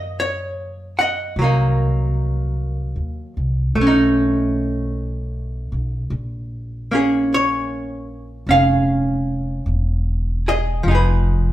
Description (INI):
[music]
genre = jazz ballad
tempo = 51 BPM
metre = 4/4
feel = swing 67% on 8ths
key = Bb minor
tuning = A4 = 440 Hz
[part]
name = archtop guitar, miked and amplified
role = accompaniment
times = 0.0-11.5 s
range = Eb3 to Gb5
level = -19 LUFS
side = right 1 dB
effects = none
[part]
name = upright bass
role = bass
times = 0.0-11.5 s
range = E1 to Gb2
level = -21 LUFS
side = equal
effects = none
[sound]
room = moderate stone room reverb, RT60 0.9 s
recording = band playing live in one room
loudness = -17 LUFS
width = side -13 dB against mid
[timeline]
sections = 0.0-11.5 A section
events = none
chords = 0.0 Ebm7; 1.4 Cm7b5; 3.8 B9; 6.1 Bbm7; 10.9 Fm7b5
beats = 0.19 | 1.38 2.57 3.76 4.94 | 6.12 7.30 8.48 9.67 | 10.85